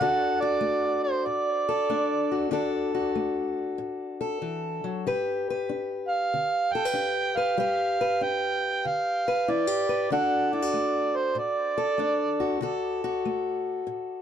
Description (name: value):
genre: acoustic country blues, solo or duo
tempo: 95 BPM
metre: 4/4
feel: swing 67% on 8ths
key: D major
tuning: A4 = 440 Hz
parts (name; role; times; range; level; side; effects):
- overdriven harmonica; melody; 0.0-12.6 s; C5 to G5; -26 LUFS; right 3 dB; tape echo
- fingerpicked steel-string acoustic guitar; accompaniment; 0.0-14.2 s; A2 to B4; -28 LUFS; left 3 dB; none
room: light reverb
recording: dark, warm production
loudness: -24 LUFS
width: side -9 dB against mid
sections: 0.0-14.2 A section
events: none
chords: 0.0 D; 5.1 G; 10.1 D